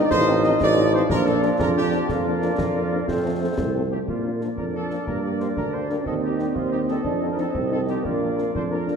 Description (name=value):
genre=military-style march for wind band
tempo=121 BPM (dotted quarters)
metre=6/8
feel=straight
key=Bb major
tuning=A4 = 436 Hz
part: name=clear trumpet section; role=melody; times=0.0-9.0 s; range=F4 to Eb5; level=-30 LUFS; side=equal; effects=none
part: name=bright trombone section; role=sustained chords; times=0.0-3.9 s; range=F3 to Eb4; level=-26 LUFS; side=right 2 dB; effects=none
part: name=mellow tuba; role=bass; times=0.0-9.0 s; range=A1 to Bb2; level=-24 LUFS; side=right 2 dB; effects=none
part: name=mellow woodwind section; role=second line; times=0.1-9.0 s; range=F4 to Eb5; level=-30 LUFS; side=left 2 dB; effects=none
part: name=concert snare drum, clash cymbals and concert bass drum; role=drums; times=0.1-9.0 s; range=none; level=-32 LUFS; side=left 2 dB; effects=none
part: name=mellow French horn section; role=accompaniment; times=0.3-8.9 s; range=F3 to Eb4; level=-29 LUFS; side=left 5 dB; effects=none
part: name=warm euphonium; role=second line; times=4.6-9.0 s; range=Bb3 to D4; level=-28 LUFS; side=right 3 dB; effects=none
room=wet scoring stage reverb, RT60 2.0 s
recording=none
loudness=-20 LUFS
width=side -6 dB against mid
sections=0.0-4.1 A section; 4.1-9.0 B section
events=none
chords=0.1 F7/A; 1.1 Bb; 2.1 Bb/F; 3.1 F; 4.1 Bb; 5.1 Gm; 6.1 Cm/Eb; 7.1 F7; 8.0 Bb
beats=| 0.10 0.60 | 1.10 1.59 | 2.09 2.58 | 3.08 3.58 | 4.07 4.57 | 5.07 5.56 | 6.06 6.56 | 7.05 7.55 | 8.05 8.54